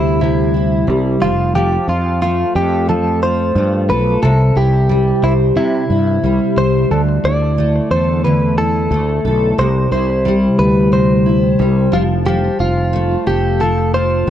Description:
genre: acoustic pop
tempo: 90 BPM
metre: 4/4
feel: swing 55% on 16ths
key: unclear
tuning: A4 = 440 Hz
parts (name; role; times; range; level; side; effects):
- direct-recorded clean electric guitar; melody; 0.0-14.3 s; E4 to D5; -18 LUFS; equal; ping-pong delay
- fingerpicked steel-string acoustic guitar; accompaniment; 0.0-14.3 s; C3 to C5; -16 LUFS; equal; double-tracked left and right
- fretless electric bass; bass; 0.0-14.3 s; F1 to C3; -17 LUFS; equal; none
room: light reverb, studio ambience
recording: worn, warbling old tape, cassette tape, warbly pitch drift, nothing above 10.6 kHz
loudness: -12 LUFS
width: side -10 dB against mid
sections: 0.0-14.3 A section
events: none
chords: 0.0 C; 1.2 F; 4.2 C; 6.9 Dsus2; 9.6 C; 11.9 F

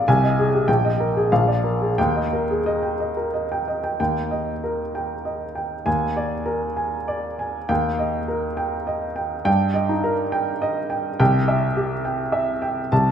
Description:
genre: classical, romantic character piece for solo piano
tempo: 86-107 BPM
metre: 3/4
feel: rubato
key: Eb major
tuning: A4 = 440 Hz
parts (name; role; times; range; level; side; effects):
- warm baby grand piano; solo; 0.0-13.1 s; Bb1 to A5; -20 LUFS; equal; none
room: moderate concert hall reverb, RT60 2.0 s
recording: minimal, uncompressed stereo recording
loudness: -20 LUFS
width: side -8 dB against mid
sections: 0.0-4.0 A section; 4.0-13.1 A section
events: none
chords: 0.1 Ab/C; 0.7 Eb/Bb; 1.3 Bb; 2.0 Eb; 5.9 Bb7/Eb; 7.7 Eb; 9.5 Eb/G; 11.2 C

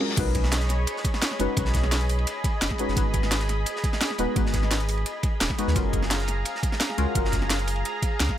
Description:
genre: liquid drum and bass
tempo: 172 BPM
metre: 4/4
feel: straight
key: unclear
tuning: A4 = 440 Hz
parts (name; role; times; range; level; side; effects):
- deep mellow chord stab; accompaniment; 0.0-8.4 s; G#3 to C#5; -30 LUFS; left 2 dB; chorus, digital delay
- lush unison pad; sustained chords; 0.0-8.4 s; F#3 to B5; -31 LUFS; equal; chorus
- crunchy breakbeat drum kit; drums; 0.0-8.3 s; ride cymbal, snare drum; -35 LUFS; right 1 dB; high-pass filter on cymbals, low-pass filter on cymbals, high-pass filter on snare, low-pass filter on snare, high-pass filter on room, low-pass filter on room
- warm sub bass; bass; 0.2-8.3 s; D#1 to D#2; -26 LUFS; equal; none
- drum and bass drum kit; drums; 0.2-8.4 s; crash cymbal, hi-hat, snare drum; -28 LUFS; equal; overdrive
- electronic kick drum; drums; 0.2-8.4 s; none; -26 LUFS; equal; overdrive
room: digital ambience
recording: none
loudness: -22 LUFS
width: side -11 dB against mid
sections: 0.2-8.4 A section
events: drop 0.2-8.4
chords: 0.2 B69; 3.0 G#m7; 5.8 F#maj9

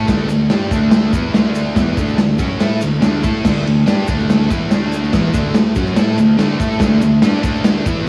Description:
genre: garage rock duo or trio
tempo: 143 BPM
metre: 4/4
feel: straight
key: D major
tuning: A4 = 439 Hz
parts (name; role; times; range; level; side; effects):
- thick fuzz guitar; riff; 0.0-8.1 s; D3 to A4; -19 LUFS; equal; distortion, cassette tape
- fuzz picked electric bass; bass; 0.0-8.1 s; D2 to A2; -24 LUFS; equal; overdrive
- raw garage drum kit; drums; 0.1-8.0 s; crash cymbal, kick drum, ride cymbal, snare drum; -18 LUFS; equal; none
- egg shaker; percussion; 0.1-8.0 s; none; -44 LUFS; equal; none
room: light reverb, small room ambience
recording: home recording on cassette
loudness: -15 LUFS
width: mono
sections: 0.0-8.1 A section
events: none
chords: 0.0 D

